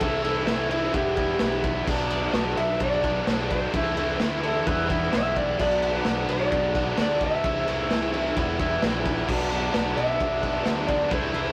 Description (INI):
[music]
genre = garage rock duo or trio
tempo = 129 BPM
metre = 4/4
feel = straight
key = unclear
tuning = A4 = 440 Hz
[part]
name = electric slide guitar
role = melody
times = 0.0-11.5 s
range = E4 to E5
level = -30 LUFS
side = equal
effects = tape echo
[part]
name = biting overdriven guitar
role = riff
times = 0.0-11.5 s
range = B2 to E4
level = -29 LUFS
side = equal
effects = none
[part]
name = growling picked electric bass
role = bass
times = 0.0-11.5 s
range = E1 to D2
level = -35 LUFS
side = equal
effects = overdrive
[part]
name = raw garage drum kit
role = drums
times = 0.0-11.4 s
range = crash cymbal, kick drum, ride cymbal, snare drum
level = -30 LUFS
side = equal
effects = none
[part]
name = combo organ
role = sustained chords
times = 5.6-11.5 s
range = E4 to E5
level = -41 LUFS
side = equal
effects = none
[sound]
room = wet stone room reverb, RT60 1.0 s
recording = rough rehearsal-room recording, warm saturation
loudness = -25 LUFS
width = mono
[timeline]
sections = 0.0-11.5 A section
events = none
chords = 0.0 Am/C; 0.9 Em; 1.9 Bm; 3.7 Am/C; 4.7 Em; 5.6 Bm; 7.4 Am/C; 8.4 Em; 9.3 Bm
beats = | 0.02 0.48 0.94 1.41 | 1.88 2.34 2.80 3.27 | 3.73 4.20 4.66 5.13 | 5.59 6.05 6.52 6.98 | 7.44 7.90 8.37 8.82 | 9.28 9.74 10.20 10.66 | 11.12